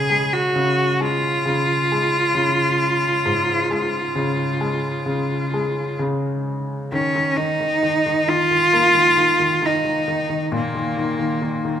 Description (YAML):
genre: acoustic folk-pop ballad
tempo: 66 BPM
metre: 4/4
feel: straight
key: unclear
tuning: A4 = 439 Hz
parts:
  - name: bright cello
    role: melody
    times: 0.0-11.8 s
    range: Bb3 to Ab4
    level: -18 LUFS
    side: right 1 dB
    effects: none
  - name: felt-muted upright piano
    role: accompaniment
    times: 0.0-11.8 s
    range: Ab2 to Bb3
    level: -23 LUFS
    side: left 1 dB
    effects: none
room: wet scoring stage reverb, RT60 1.6 s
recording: minimal, uncompressed stereo recording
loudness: -17 LUFS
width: side -9 dB against mid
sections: 0.0-6.9 A section; 6.9-11.8 B section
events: none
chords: 0.0 Db; 6.9 Eb5